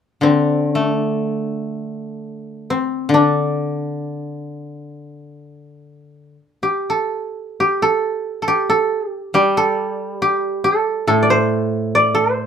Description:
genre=japanese traditional, Japanese chamber music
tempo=free time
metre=none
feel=none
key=unclear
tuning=A4 = 440 Hz
part: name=koto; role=melody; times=0.2-12.5 s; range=C4 to D5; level=-18 LUFS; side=right 1 dB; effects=none
part: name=koto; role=accompaniment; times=0.2-12.5 s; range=A2 to A3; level=-20 LUFS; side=left 2 dB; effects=none
room=wet studio reverb, RT60 0.6 s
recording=none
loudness=-16 LUFS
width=side -7 dB against mid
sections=0.0-7.6 A section; 7.6-12.5 B section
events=none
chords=none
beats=free time

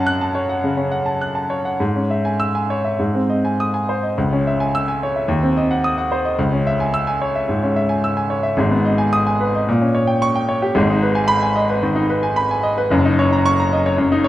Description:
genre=classical, virtuoso piano study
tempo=109 BPM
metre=4/4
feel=rubato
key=C# minor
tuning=A4 = 440 Hz
part: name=clear grand piano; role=solo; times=0.0-14.3 s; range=Gb1 to F#6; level=-16 LUFS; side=equal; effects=none
room=wet recital hall reverb, RT60 1.6 s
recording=none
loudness=-16 LUFS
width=side -14 dB against mid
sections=0.0-4.2 A section; 4.2-14.3 B section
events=none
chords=0.0 F#m; 1.8 C#m/G#; 3.0 G#; 4.2 C#m; 5.3 Cdim/Eb; 6.4 C#m; 8.6 G#m; 9.7 Gdim/Bb; 10.8 G#m; 12.9 Ebm7/Gb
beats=0.07 0.62 1.20 | 1.79 2.39 2.98 3.57 | 4.16 4.72 5.27 5.82 | 6.37 6.92 7.48 8.02 | 8.57 9.12 9.67 10.21 | 10.76 11.30 11.84 12.37 | 12.92 13.46 13.99

